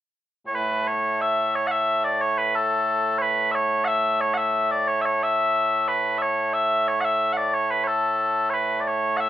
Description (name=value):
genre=scottish traditional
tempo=90 BPM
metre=2/4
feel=straight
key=A major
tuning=A4 = 440 Hz
part: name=mellow small bagpipes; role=melody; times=0.5-9.3 s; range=A2 to F#5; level=-20 LUFS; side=equal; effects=none
room=moderate studio ambience, RT60 0.5 s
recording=rough home demo mix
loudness=-20 LUFS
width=side -12 dB against mid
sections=0.2-1.5 A section; 1.5-9.3 B section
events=none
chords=none